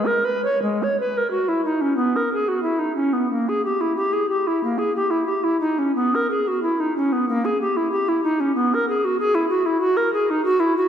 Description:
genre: classical, baroque-style fantasia for unaccompanied recorder.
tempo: 91 BPM.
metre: 4/4.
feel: uneven beats, rubato.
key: G# minor.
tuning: A4 = 441 Hz.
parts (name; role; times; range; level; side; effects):
bass recorder; solo; 0.0-10.9 s; G#3 to C#5; -19 LUFS; equal; none.
room: wet concert hall reverb, RT60 2.4 s.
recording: heard from further back in the room.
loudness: -19 LUFS.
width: side -8 dB against mid.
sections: 0.6-10.9 A section.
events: none.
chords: none.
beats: | 0.63 1.33 1.98 2.65 | 3.31 3.98 4.63 5.28 | 5.96 6.64 7.28 7.92 | 8.56 9.18 9.81 10.45.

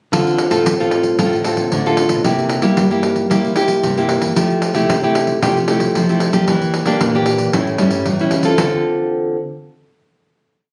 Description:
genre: samba and choro.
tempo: 114 BPM.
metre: 4/4.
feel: straight.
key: D minor.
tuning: A4 = 440 Hz.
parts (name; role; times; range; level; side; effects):
nylon-string guitar; accompaniment; 0.1-9.4 s; G2 to A4; -18 LUFS; equal; none.
nylon-string guitar; bass; 0.1-8.8 s; G2 to Bb3; -23 LUFS; equal; none.
pandeiro; percussion; 0.1-8.7 s; none; -24 LUFS; equal; none.
room: light reverb.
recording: recorded on a phone in the room, studio reverb, compression.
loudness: -16 LUFS.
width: mono.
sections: 0.1-8.6 A section; 8.6-10.7 final chord.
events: none.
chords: 0.1 Dm7; 2.2 C7; 4.4 Fmaj9; 6.5 Em7b5; 7.5 A7; 8.6 Dm7.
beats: | 0.13 0.66 1.19 1.72 | 2.25 2.78 3.31 3.83 | 4.36 4.89 5.42 5.95 | 6.48 7.00 7.53 8.06 | 8.59 9.12.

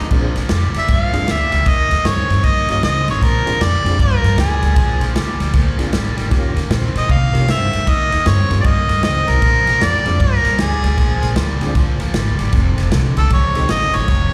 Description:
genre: electric blues shuffle.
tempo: 155 BPM.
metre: 4/4.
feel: swing 64% on 8ths.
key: Bb mixolydian.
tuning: A4 = 440 Hz.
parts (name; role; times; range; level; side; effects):
warm harmonica; melody; 0.0-14.3 s; Eb4 to F5; -21 LUFS; equal; overdrive, slapback echo, digital delay.
cranked stack guitar; riff; 0.0-14.3 s; F2 to C4; -26 LUFS; equal; overdrive, spring reverb, slapback echo.
upright bass; bass; 0.0-14.3 s; F1 to C3; -20 LUFS; equal; none.
tonewheel organ; accompaniment; 0.1-13.7 s; Bb3 to A4; -29 LUFS; equal; slow rotary speaker, overdrive, chorus vibrato, slapback echo.
swinging big-band drum kit; drums; 0.1-14.2 s; crash cymbal, kick drum, ride cymbal, snare drum; -22 LUFS; equal; none.
room: little or no reverb.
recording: live gig heard through the venue's PA, recital hall reverb.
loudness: -16 LUFS.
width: mono.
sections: 0.1-14.3 A section.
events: none.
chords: 0.1 Bb9; 1.7 Eb7; 3.2 Bb9; 6.3 Eb9; 9.4 Bb7; 12.5 F.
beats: | 0.11 0.50 0.89 1.28 | 1.66 2.05 2.44 2.83 | 3.22 3.60 3.99 4.38 | 4.77 5.16 5.54 5.93 | 6.32 6.71 7.10 7.49 | 7.87 8.26 8.65 9.04 | 9.43 9.81 10.20 10.59 | 10.98 11.37 11.75 12.14 | 12.53 12.92 13.30 13.69 | 14.08.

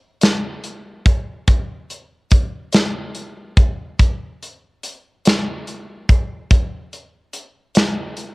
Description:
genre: pop.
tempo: 48 BPM (dotted quarters).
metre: 6/8.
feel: straight.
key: none.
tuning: none.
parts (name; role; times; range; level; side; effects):
modern studio drum kit; drums; 0.2-8.3 s; hi-hat, kick drum, snare drum; -15 LUFS; equal; cassette tape.
room: light reverb.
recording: home recording on cassette.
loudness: -16 LUFS.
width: side -27 dB against mid.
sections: 0.0-8.3 A section.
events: none.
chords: none.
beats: 0.23 | 1.48 2.73 | 3.99 5.25 | 6.51 7.76.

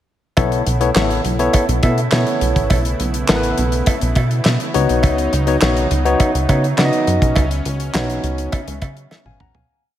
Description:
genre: early-eighties boogie funk.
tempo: 103 BPM.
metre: 4/4.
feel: straight.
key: unclear.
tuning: A4 = 441 Hz.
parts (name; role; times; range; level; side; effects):
barky tine electric piano; accompaniment; 0.4-9.8 s; B3 to A#5; -19 LUFS; moving between left 7 dB and right 2 dB; auto-pan.
brassy analog pad; sustained chords; 0.4-9.7 s; C#3 to E4; -26 LUFS; right 2 dB; chorus.
plucky analog bass; bass; 0.4-9.7 s; G#1 to C#3; -19 LUFS; equal; none.
damped 70s drum kit; drums; 0.4-9.7 s; handclaps, hi-hat, kick drum, snare drum, toms; -19 LUFS; equal; none.
cowbell; percussion; 0.4-9.2 s; none; -28 LUFS; right 2 dB; slapback echo.
room: moderate scoring stage reverb, RT60 2.0 s.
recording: big arena sound.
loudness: -14 LUFS.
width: side -12 dB against mid.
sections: 0.4-9.7 verse.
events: fade-out 7.4-9.7; drum fill 9.1-9.7.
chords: 0.4 B9sus4; 4.7 C#9sus4.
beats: | 0.37 0.96 1.54 2.12 | 2.70 3.29 3.87 4.45 | 5.03 5.62 6.20 6.78 | 7.36 7.95 8.53 9.11.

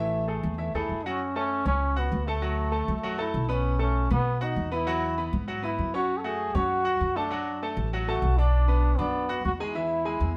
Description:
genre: latin, salsa.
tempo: 197 BPM.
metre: 4/4.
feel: straight.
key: unclear.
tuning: A4 = 440 Hz.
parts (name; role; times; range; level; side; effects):
bright trombone; melody; 0.0-10.4 s; A3 to A4; -32 LUFS; equal; none.
bright baby grand piano; accompaniment; 0.0-10.3 s; E3 to F#6; -34 LUFS; equal; none.
upright bass; bass; 0.0-10.4 s; A1 to B2; -30 LUFS; equal; none.
room: moderate stone room reverb, RT60 1.1 s.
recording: band playing live in one room.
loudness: -27 LUFS.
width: mono.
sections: 0.0-1.2 A section; 1.2-10.4 B section.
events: none.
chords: 0.0 A5; 1.2 F#m; 2.4 Dadd9; 3.6 B7; 4.9 Eadd9; 6.1 F#m; 7.3 D; 8.5 Bm; 9.8 E.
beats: 0.29 0.59 0.90 | 1.20 1.51 1.81 2.12 | 2.43 2.73 3.04 3.34 | 3.65 3.95 4.26 4.56 | 4.87 5.17 5.48 5.79 | 6.09 6.39 6.70 7.01 | 7.31 7.62 7.92 8.23 | 8.53 8.84 9.14 9.45 | 9.75 10.06 10.36.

